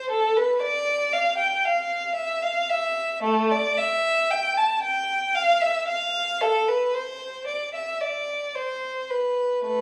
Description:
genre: classical, baroque-style suite movement for unaccompanied violin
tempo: 56 BPM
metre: 3/4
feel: uneven beats, rubato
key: A minor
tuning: A4 = 440 Hz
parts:
  - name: warm violin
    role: solo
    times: 0.0-9.8 s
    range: A3 to A5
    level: -24 LUFS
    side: equal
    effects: none
room: wet stone room reverb, RT60 1.2 s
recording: heard from further back in the room, small room ambience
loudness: -24 LUFS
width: mono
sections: 0.0-9.8 A section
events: none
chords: none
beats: | 0.11 1.13 2.16 | 3.25 4.32 5.36 | 6.42 7.48 8.55 | 9.67

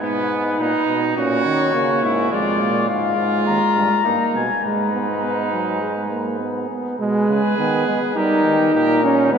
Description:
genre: classical, imitative canzona for brass ensemble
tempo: 103 BPM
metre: 4/4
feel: straight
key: G# minor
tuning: A4 = 441 Hz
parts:
  - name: mellow cornet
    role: melody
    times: 0.0-9.4 s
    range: A#4 to A#5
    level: -22 LUFS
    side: left 7 dB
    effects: none
  - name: warm trumpet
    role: second line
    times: 0.0-9.4 s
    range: B3 to G#4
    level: -24 LUFS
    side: right 4 dB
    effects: none
  - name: mellow trombone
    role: accompaniment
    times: 0.0-9.4 s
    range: F#3 to D#4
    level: -21 LUFS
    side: right 2 dB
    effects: none
  - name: warm euphonium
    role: bass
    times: 0.0-9.4 s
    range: D#2 to G#3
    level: -25 LUFS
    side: right 2 dB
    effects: none
room: wet cathedral reverb, RT60 6.3 s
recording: none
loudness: -17 LUFS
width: side -7 dB against mid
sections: 0.0-7.0 A section; 7.0-9.4 B section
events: none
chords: 0.0 G#m; 1.2 A#dim; 2.3 Ddim/F; 3.5 D#; 4.6 G#m; 7.0 G#m/B; 8.2 D#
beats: | 0.01 0.59 1.17 1.74 | 2.32 2.89 3.47 4.05 | 4.64 5.23 5.82 6.41 | 7.00 7.58 8.16 8.74 | 9.33

